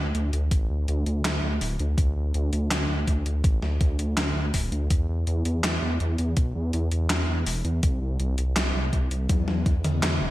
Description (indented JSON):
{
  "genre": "synthwave",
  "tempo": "82 BPM",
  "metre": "4/4",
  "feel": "straight",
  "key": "unclear",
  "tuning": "A4 = 438 Hz",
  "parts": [
    { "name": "dark detuned saw bass", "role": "bass", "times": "0.0-10.3 s", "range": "D1 to E2", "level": "-25 LUFS", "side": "equal", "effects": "sidechain pumping" },
    { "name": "gated 80s digital drum machine", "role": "drums", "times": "0.1-10.2 s", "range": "handclaps, hi-hat, snare drum, toms", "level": "-28 LUFS", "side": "equal", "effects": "gated reverb, gated reverb snare, overdrive" },
    { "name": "electronic kick drum", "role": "drums", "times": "0.5-9.8 s", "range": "none", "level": "-23 LUFS", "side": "equal", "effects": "overdrive" }
  ],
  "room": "little or no reverb",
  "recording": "none",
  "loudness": "-23 LUFS",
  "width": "side -16 dB against mid",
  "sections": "0.0-10.3 A section",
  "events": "drum fill 9.3-10.3",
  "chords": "none",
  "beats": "0.52 1.25 | 1.98 2.71 3.44 4.17 | 4.91 5.64 6.37 7.10 | 7.83 8.56 9.29 10.03"
}